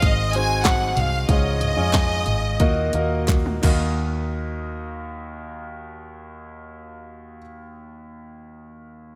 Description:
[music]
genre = piano-driven pop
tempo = 83-97 BPM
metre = 4/4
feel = straight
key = Eb minor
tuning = A4 = 441 Hz
[part]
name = clear studio violin section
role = melody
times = 0.0-3.2 s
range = Eb5 to Ab5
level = -27 LUFS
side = equal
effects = none
[part]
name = clear concert grand piano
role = accompaniment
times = 0.0-9.2 s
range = Eb2 to Eb5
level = -30 LUFS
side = equal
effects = subtle chorus
[part]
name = vintage muted fingered electric bass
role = bass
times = 0.0-7.4 s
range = Ab1 to F2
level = -27 LUFS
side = equal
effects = none
[part]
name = house drum kit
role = drums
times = 0.0-3.8 s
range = crash cymbal, handclaps, hi-hat, kick drum, snare drum, toms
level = -24 LUFS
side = equal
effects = gated reverb
[part]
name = group handclap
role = percussion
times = 0.7-4.3 s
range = none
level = -35 LUFS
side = equal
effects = none
[sound]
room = light reverb, small room ambience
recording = bright 1980s-style digital production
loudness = -21 LUFS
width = mono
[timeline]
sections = 0.0-4.0 A section; 4.0-6.9 B section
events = slowing down 0.0-4.0; drum fill 3.3-4.0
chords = 0.0 Ab7; 1.3 Dbadd9; 2.6 Ebm

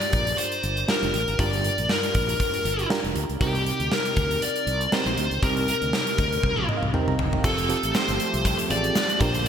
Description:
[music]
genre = 1980s-style pop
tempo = 119 BPM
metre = 4/4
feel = swing 55% on 16ths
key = unclear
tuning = A4 = 440 Hz
[part]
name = high-gain lead guitar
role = melody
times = 0.0-9.5 s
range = G4 to D5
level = -25 LUFS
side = left 2 dB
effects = distortion, shimmer reverb
[part]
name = FM electric piano with tremolo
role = accompaniment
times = 0.0-9.5 s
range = G2 to Bb5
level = -30 LUFS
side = right 3 dB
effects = shimmer reverb
[part]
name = gated 80s drum kit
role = drums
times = 0.0-9.5 s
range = crash cymbal, hi-hat, kick drum, snare drum, toms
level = -26 LUFS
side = equal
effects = gated reverb
[part]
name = fretless electric bass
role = bass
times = 0.1-9.5 s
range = F1 to D2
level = -29 LUFS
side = equal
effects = none
[part]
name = brassy analog pad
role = sustained chords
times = 7.4-9.5 s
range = D3 to G4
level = -32 LUFS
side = equal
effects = chorus, shimmer reverb
[part]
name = egg shaker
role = percussion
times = 7.4-9.4 s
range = none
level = -41 LUFS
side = left 11 dB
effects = none
[sound]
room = moderate lush hall reverb, RT60 1.9 s, small room ambience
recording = bright 1980s-style digital production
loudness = -21 LUFS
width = side -8 dB against mid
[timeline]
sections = 0.0-7.4 A section; 7.4-9.5 B section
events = drum fill 6.4-7.4; FM electric piano fill 6.4-7.4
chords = 0.0 Gm7; 3.4 Cm7; 7.4 Fadd9

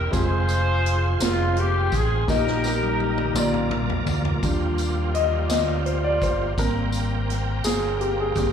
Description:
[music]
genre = slow gospel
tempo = 56 BPM (dotted quarters)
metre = 6/8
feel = straight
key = Eb major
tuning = A4 = 441 Hz
[part]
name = mellow horn section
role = melody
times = 0.0-3.7 s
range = Eb4 to C5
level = -25 LUFS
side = left 1 dB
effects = slapback echo
[part]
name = warm concert grand piano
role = accompaniment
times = 0.0-8.5 s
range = Bb2 to Eb5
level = -26 LUFS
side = left 3 dB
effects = slapback echo
[part]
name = bright tonewheel organ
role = sustained chords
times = 0.0-8.5 s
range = F3 to G5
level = -31 LUFS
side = right 4 dB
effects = slow rotary speaker, overdrive, chorus vibrato
[part]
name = fingered electric bass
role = bass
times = 0.0-8.5 s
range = F1 to Eb2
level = -25 LUFS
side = equal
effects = none
[part]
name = swinging big-band drum kit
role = drums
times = 0.1-8.5 s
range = hi-hat, kick drum, snare drum, toms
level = -28 LUFS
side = equal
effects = none
[part]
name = tambourine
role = percussion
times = 0.1-8.5 s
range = none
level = -35 LUFS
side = left 4 dB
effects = none
[part]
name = pedal harmonium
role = sustained chords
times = 4.4-8.5 s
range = G3 to G5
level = -34 LUFS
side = right 3 dB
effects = none
[sound]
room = light reverb, small room reverb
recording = live gig heard through the venue's PA, club reverb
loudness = -20 LUFS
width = side -8 dB against mid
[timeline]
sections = 0.0-4.4 A section; 4.4-8.5 B section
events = drum fill 2.3-4.4; grand piano solo 4.4-8.5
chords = 0.1 Fm; 2.3 Eb/Bb; 3.4 Bb; 4.4 Ebmaj9; 6.6 Abmaj9

